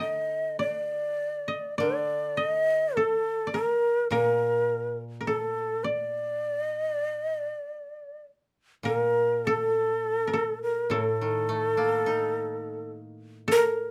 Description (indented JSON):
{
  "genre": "japanese traditional, Japanese chamber music",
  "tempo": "48-54 BPM",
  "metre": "2/4",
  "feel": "rubato",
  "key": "D miyako bushi",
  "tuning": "A4 = 443 Hz",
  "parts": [
    { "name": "breathy shakuhachi", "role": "melody", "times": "0.0-13.9 s", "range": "A4 to Eb5", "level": "-28 LUFS", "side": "equal", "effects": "none" },
    { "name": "koto", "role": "second line", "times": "0.0-13.9 s", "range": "A4 to Bb5", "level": "-33 LUFS", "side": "equal", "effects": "none" },
    { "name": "koto", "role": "accompaniment", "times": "0.0-13.9 s", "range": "A2 to Eb4", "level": "-39 LUFS", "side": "equal", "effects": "none" }
  ],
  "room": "moderate small room ambience, RT60 0.5 s",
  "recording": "dark, warm production",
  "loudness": "-27 LUFS",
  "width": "mono",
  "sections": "0.0-8.9 A section; 8.9-13.9 B section",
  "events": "none",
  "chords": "none"
}